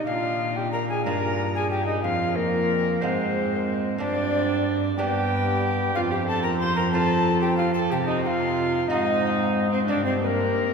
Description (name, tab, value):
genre	classical, renaissance-style consort dance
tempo	61 BPM (dotted quarters)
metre	6/8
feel	straight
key	unclear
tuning	A4 = 438 Hz
part	alto recorder	melody	0.0-10.7 s	Bb4 to C6	-26 LUFS	left 3 dB	none
part	lute	accompaniment	0.0-10.7 s	F2 to F4	-31 LUFS	right 2 dB	none
part	warm trombone	accompaniment	0.0-10.7 s	B3 to D4	-31 LUFS	left 2 dB	none
part	rich cello	bass	0.0-10.7 s	F2 to C3	-27 LUFS	right 1 dB	none
part	warm viola	second line	0.1-10.7 s	Bb3 to C5	-28 LUFS	right 4 dB	none
room	wet cathedral reverb, RT60 4.8 s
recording	minimal, uncompressed stereo recording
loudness	-21 LUFS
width	side -5 dB against mid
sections	0.0-10.7 A section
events	none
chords	0.1 Bb; 2.0 Fm; 4.0 Gsus4; 5.0 G; 6.0 F5; 7.9 Cm; 9.9 Gsus4